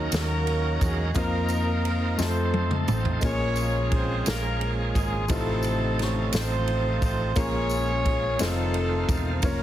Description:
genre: slow gospel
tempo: 58 BPM (dotted quarters)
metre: 6/8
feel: straight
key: unclear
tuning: A4 = 439 Hz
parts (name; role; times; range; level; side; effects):
- mellow horn section; melody; 0.0-9.6 s; Ab3 to Db5; -29 LUFS; right 1 dB; none
- clear concert grand piano; accompaniment; 0.0-9.6 s; A2 to Db5; -31 LUFS; left 3 dB; none
- bright tonewheel organ; sustained chords; 0.0-9.6 s; C3 to Bb4; -32 LUFS; right 4 dB; slow rotary speaker, overdrive
- hollow-body short-scale fingered electric bass; bass; 0.0-9.6 s; E1 to F2; -27 LUFS; equal; none
- natural country drum kit; drums; 0.1-9.6 s; kick drum, ride cymbal, snare drum, toms; -29 LUFS; equal; none
- tambourine; percussion; 0.1-9.6 s; none; -39 LUFS; left 5 dB; none
room: light reverb, studio ambience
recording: heavily compressed radio sound, multiband compression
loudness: -23 LUFS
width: side -12 dB against mid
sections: 0.0-9.6 A section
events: drum fill 2.2-3.2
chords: 0.0 Ebm7; 1.2 F7sus4; 2.2 F7; 3.2 Bbm7; 5.3 F7/A; 7.4 Bbm7; 8.4 F7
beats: 0.12 | 1.15 2.19 | 3.22 4.26 | 5.29 6.33 | 7.36 8.39 | 9.43

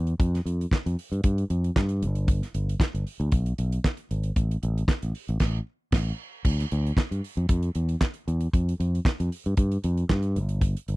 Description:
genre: disco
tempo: 115 BPM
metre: 4/4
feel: straight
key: unclear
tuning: A4 = 441 Hz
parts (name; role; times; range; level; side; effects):
- fingered electric bass; bass; 0.0-11.0 s; G1 to G2; -25 LUFS; equal; none
- damped 70s drum kit; drums; 0.1-11.0 s; crash cymbal, handclaps, hi-hat, kick drum, snare drum; -24 LUFS; equal; none
room: little or no reverb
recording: dry, close 1970s-style studio recording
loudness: -24 LUFS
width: side -21 dB against mid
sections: 0.0-6.4 A section; 6.4-11.0 A section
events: band accent 5.4-6.4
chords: none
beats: | 0.20 0.72 1.24 1.76 | 2.28 2.80 3.32 3.84 | 4.37 4.88 5.41 5.93 | 6.45 6.97 7.49 8.01 | 8.53 9.05 9.57 10.09 | 10.61

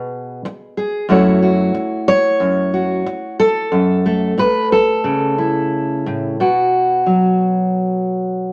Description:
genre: folk, solo fingerstyle acoustic guitar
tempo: 91 BPM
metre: 4/4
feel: rubato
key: unclear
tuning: A4 = 439 Hz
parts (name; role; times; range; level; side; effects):
- fingerpicked steel-string acoustic guitar; solo; 0.0-8.5 s; F#2 to C#5; -17 LUFS; equal; none
room: wet studio reverb, RT60 0.6 s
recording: none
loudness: -16 LUFS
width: mono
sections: 0.0-6.4 A section; 6.4-8.5 B section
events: none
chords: 0.0 E (rootless); 1.1 F#m7; 6.4 B5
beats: 0.45 | 1.10 1.75 2.40 3.06 | 3.71 4.38 5.04 5.72 | 6.40 7.07 7.74 8.41

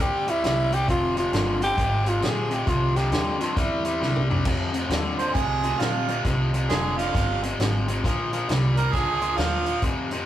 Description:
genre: electric blues shuffle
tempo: 134 BPM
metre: 4/4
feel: swing 64% on 8ths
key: F minor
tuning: A4 = 442 Hz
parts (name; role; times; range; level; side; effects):
- growling tenor saxophone; melody; 0.0-4.3 s; E4 to Ab4; -25 LUFS; equal; none
- overdriven electric guitar; riff; 0.0-10.3 s; F2 to G3; -27 LUFS; left 2 dB; none
- upright bass; bass; 0.0-10.3 s; F1 to F2; -27 LUFS; right 1 dB; none
- vintage drum kit; drums; 0.3-10.2 s; crash cymbal, hi-hat, kick drum, snare drum, toms; -28 LUFS; equal; none
- clear harmonica; second line; 5.2-9.8 s; F4 to C5; -26 LUFS; right 6 dB; overdrive
room: moderate studio reverb, RT60 0.5 s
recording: rough rehearsal-room recording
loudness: -21 LUFS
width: side -12 dB against mid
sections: 0.0-4.5 A section; 4.5-10.3 B section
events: drum fill 4.0-4.5; harmonica solo 4.5-10.3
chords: 0.0 C; 0.9 Fm7; 3.6 C; 4.5 Fm7; 8.0 Bbm7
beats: 0.43 | 0.88 1.33 1.78 2.22 | 2.67 3.12 3.56 4.01 | 4.46 4.91 5.35 5.80 | 6.25 6.70 7.14 7.59 | 8.04 8.49 8.93 9.38 | 9.83

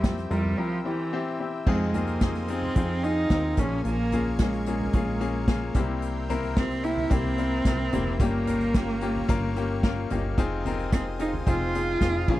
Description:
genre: piano-driven pop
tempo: 110 BPM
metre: 4/4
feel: straight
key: unclear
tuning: A4 = 439 Hz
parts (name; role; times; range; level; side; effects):
- warm cello; melody; 0.0-12.4 s; E3 to F4; -28 LUFS; right 2 dB; slapback echo
- clear concert grand piano; accompaniment; 0.0-12.4 s; G2 to G5; -30 LUFS; left 5 dB; none
- lush unison pad; sustained chords; 0.0-12.4 s; Bb4 to E6; -42 LUFS; right 1 dB; chorus
- plucky analog bass; bass; 0.0-12.4 s; F1 to F2; -30 LUFS; equal; none
- unplugged drum kit; drums; 0.0-12.4 s; crash cymbal, hi-hat, kick drum, snare drum, toms; -26 LUFS; equal; none
room: little or no reverb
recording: none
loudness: -23 LUFS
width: side -15 dB against mid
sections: 0.0-1.7 A section; 1.7-12.4 B section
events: break 0.6-1.7; grand piano fill 9.3-10.4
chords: 0.0 C; 1.7 Fm7; 3.6 Bbm7; 5.8 C7; 8.2 Gm7b5; 10.4 Fm7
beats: 0.03 0.58 1.12 | 1.67 2.21 2.76 3.30 | 3.85 4.39 4.93 5.48 | 6.02 6.57 7.11 7.66 | 8.20 8.74 9.29 9.83 | 10.37 10.92 11.46 12.01

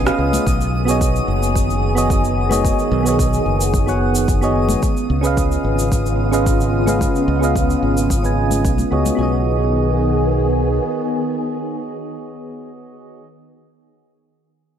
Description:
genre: sunset chillout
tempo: 110 BPM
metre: 4/4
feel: straight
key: B lydian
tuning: A4 = 440 Hz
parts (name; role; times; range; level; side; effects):
- soft electric-piano-like synth keys; accompaniment; 0.0-13.3 s; B3 to G#5; -21 LUFS; moving between left 2 dB and right 6 dB; chorus, auto-pan, low-pass filter, digital delay
- soft string machine; sustained chords; 0.0-13.2 s; C#3 to G#4; -22 LUFS; equal; phaser, ensemble chorus
- modern bright fingered electric bass; bass; 0.0-10.8 s; F#1 to C#2; -20 LUFS; equal; tube saturation
- twinkling granular texture; texture; 0.0-9.2 s; D#6; -32 LUFS; equal; built-in reverb
- deep house drum kit; drums; 0.1-9.2 s; cabasa, hi-hat, rim click; -27 LUFS; right 1 dB; none
- congas; percussion; 0.3-9.2 s; none; -27 LUFS; left 4 dB; none
- electronic kick drum; drums; 0.5-8.8 s; none; -20 LUFS; equal; none
room: light reverb, digital ambience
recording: none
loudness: -15 LUFS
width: side -9 dB against mid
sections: 0.0-9.2 A section; 9.2-13.6 B section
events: none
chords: 0.5 B6; 4.8 C#7; 9.2 B6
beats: | 0.46 1.01 1.55 2.10 | 2.65 3.19 3.74 4.28 | 4.83 5.37 5.92 6.46 | 7.01 7.55 8.10 8.64 | 9.19 9.74 10.28 10.83 | 11.37 11.92 12.46 13.01

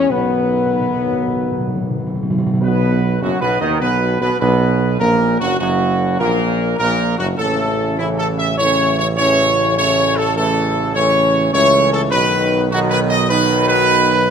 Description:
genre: classical, ceremonial fanfare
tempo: 101 BPM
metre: 4/4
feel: straight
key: B mixolydian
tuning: A4 = 440 Hz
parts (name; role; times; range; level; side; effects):
- warm trumpet section; melody; 0.0-14.3 s; E4 to E5; -17 LUFS; equal; none
- mellow French horn section; sustained chords; 0.0-14.3 s; F#3 to D#4; -21 LUFS; left 5 dB; none
- warm trombone section; sustained chords; 0.0-14.3 s; F#2 to F#3; -23 LUFS; right 4 dB; none
- warm tuba; bass; 0.0-14.3 s; F#1 to D#2; -20 LUFS; right 4 dB; none
- timpani; percussion; 0.1-2.6 s; B2; -21 LUFS; right 1 dB; none
room: moderate concert hall reverb, RT60 2.2 s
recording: none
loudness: -14 LUFS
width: side -7 dB against mid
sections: 0.0-2.6 A section; 2.6-14.3 B section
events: timpani fill 0.1-2.6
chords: 0.1 B; 5.0 F#; 7.4 A; 12.1 B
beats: | 0.09 0.73 1.36 1.98 | 2.61 3.22 3.82 4.42 | 5.01 5.61 6.21 6.80 | 7.39 7.99 8.59 9.18 | 9.77 10.36 10.95 11.53 | 12.12 12.71 13.30 13.88

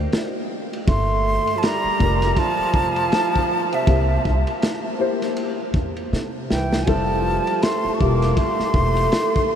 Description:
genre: hip hop, jazz-hop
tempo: 80 BPM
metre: 4/4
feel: swing 59% on 16ths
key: unclear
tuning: A4 = 440 Hz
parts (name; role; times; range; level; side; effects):
- upright bass; bass; 0.0-9.1 s; E1 to C3; -23 LUFS; equal; none
- crunchy breakbeat drum kit; drums; 0.1-9.5 s; hi-hat, kick drum, ride cymbal, snare drum; -24 LUFS; equal; none
- breathy concert flute; melody; 0.9-9.6 s; E5 to D6; -24 LUFS; equal; ping-pong delay
- breathy tenor saxophone; second line; 0.9-9.6 s; C3 to Bb3; -26 LUFS; right 4 dB; none
- dark concert grand piano; accompaniment; 2.0-9.1 s; G3 to C5; -27 LUFS; left 4 dB; analog chorus
room: wet huge ambient reverb, RT60 7.6 s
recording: dreamy mix soaked in reverb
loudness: -18 LUFS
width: side -8 dB against mid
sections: 0.0-9.6 A section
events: drum fill 6.1-6.9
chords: 0.0 N.C.; 0.9 Gm9; 3.9 C7; 6.9 Fmaj9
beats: 0.12 | 0.87 1.62 2.37 3.12 | 3.87 4.62 5.37 6.12 | 6.87 7.62 8.37 9.12

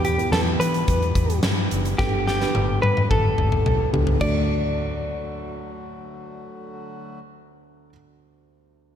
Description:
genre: piano-driven pop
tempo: 108 BPM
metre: 4/4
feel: straight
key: D major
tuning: A4 = 441 Hz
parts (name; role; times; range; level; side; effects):
- direct-recorded clean electric guitar; melody; 0.0-7.9 s; G4 to D5; -25 LUFS; left 1 dB; slapback echo, tape echo
- felt-muted upright piano; accompaniment; 0.0-9.0 s; D2 to B4; -31 LUFS; right 5 dB; slapback echo
- hand-pumped harmonium; sustained chords; 0.0-7.2 s; D3 to G4; -35 LUFS; left 1 dB; none
- vintage muted fingered electric bass; bass; 0.0-7.9 s; F#1 to E3; -24 LUFS; left 1 dB; none
- huge arena drum kit; drums; 0.0-4.3 s; crash cymbal, hi-hat, kick drum, snare drum, toms; -24 LUFS; left 1 dB; none
room: light reverb, small room ambience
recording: none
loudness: -19 LUFS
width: side -9 dB against mid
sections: 0.0-4.2 A section; 4.2-6.4 B section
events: drum fill 2.0-4.2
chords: 0.0 Em; 2.0 Gadd9; 4.2 D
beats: 0.32 0.88 1.43 | 1.99 2.54 3.10 3.65 | 4.21 4.77 5.32 5.88

